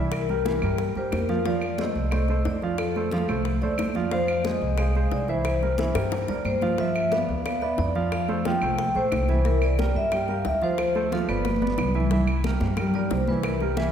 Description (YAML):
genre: Afro-Cuban jazz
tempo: 180 BPM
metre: 4/4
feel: straight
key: C mixolydian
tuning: A4 = 438 Hz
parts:
  - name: vibraphone with soft mallets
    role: melody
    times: 0.0-13.6 s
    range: A4 to G5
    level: -27 LUFS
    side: left 2 dB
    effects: none
  - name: warm concert grand piano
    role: accompaniment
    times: 0.0-13.9 s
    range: E3 to F5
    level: -28 LUFS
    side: right 3 dB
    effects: none
  - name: upright bass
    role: bass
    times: 0.0-13.9 s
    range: G1 to G2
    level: -27 LUFS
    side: equal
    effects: none
  - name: bongos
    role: percussion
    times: 0.1-13.9 s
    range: none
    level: -36 LUFS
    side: left 6 dB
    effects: none
  - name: claves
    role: percussion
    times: 0.1-13.6 s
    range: none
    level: -38 LUFS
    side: right 2 dB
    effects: none
  - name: congas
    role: percussion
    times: 0.1-13.9 s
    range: none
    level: -31 LUFS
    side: left 1 dB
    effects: none
room: wet concert hall reverb, RT60 1.8 s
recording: recorded in a church or concert hall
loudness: -22 LUFS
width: side -8 dB against mid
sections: 0.0-12.1 A section; 12.1-13.9 B section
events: drum fill 5.8-6.8, 11.4-12.1; vibraphone solo 12.1-13.9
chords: 0.0 C7; 1.5 F6; 4.1 Fm7; 5.5 C7; 6.8 G6; 8.1 Fadd9; 9.5 C9; 10.8 Dm7; 11.4 G; 12.1 C7